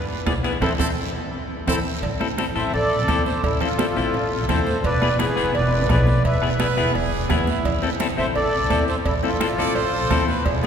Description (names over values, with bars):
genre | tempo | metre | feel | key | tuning
latin, cumbia | 171 BPM | 4/4 | straight | A harmonic minor | A4 = 441 Hz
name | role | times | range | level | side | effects
accordion | melody | 0.0-10.2 s | E4 to E5 | -24 LUFS | equal | light tremolo tuning
upright bass | bass | 0.0-10.7 s | E1 to G#2 | -25 LUFS | equal | none
semi-hollow electric guitar | accompaniment | 0.3-10.7 s | B3 to A4 | -25 LUFS | left 5 dB | none
bombo | percussion | 0.3-10.6 s | none | -28 LUFS | right 2 dB | none
congas | percussion | 0.3-10.7 s | none | -30 LUFS | right 3 dB | none
guiro | percussion | 0.3-10.7 s | none | -37 LUFS | right 6 dB | none
timbales and cowbell | percussion | 0.3-10.6 s | none | -32 LUFS | right 3 dB | none
brilliant trumpet | second line | 0.6-1.8, 6.6-10.7 s | E4 to D5 | -31 LUFS | right 5 dB | none
room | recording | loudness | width
wet cathedral reverb, RT60 7.0 s | recorded in a church or concert hall | -19 LUFS | side -7 dB against mid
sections
0.0-2.0 A section; 2.0-10.7 B section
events
drum fill 0.6-2.0; band accent 0.6-2.0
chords
0.0 E; 0.6 Am; 4.8 E7; 7.7 Am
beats
0.27 | 0.62 0.97 1.32 1.68 | 2.03 2.38 2.73 3.09 | 3.44 3.79 4.14 4.49 | 4.84 5.20 5.55 5.90 | 6.25 6.60 6.95 7.30 | 7.65 8.00 8.36 8.71 | 9.06 9.41 9.76 10.11 | 10.46